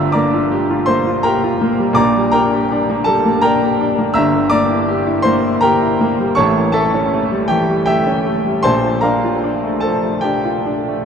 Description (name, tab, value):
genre	classical, romantic nocturne for solo piano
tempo	81 BPM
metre	3/4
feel	uneven beats, rubato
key	unclear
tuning	A4 = 441 Hz
part	clear grand piano	solo	0.0-11.1 s	G1 to E6	-13 LUFS	equal	none
room	wet huge ambient reverb, RT60 7.7 s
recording	in a vast, echoing space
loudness	-13 LUFS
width	side -7 dB against mid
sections	0.0-11.1 A section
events	none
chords	0.0 Gm7; 2.0 Gm/Bb; 4.2 Em7b5/G; 6.4 A7; 8.6 Bbmaj7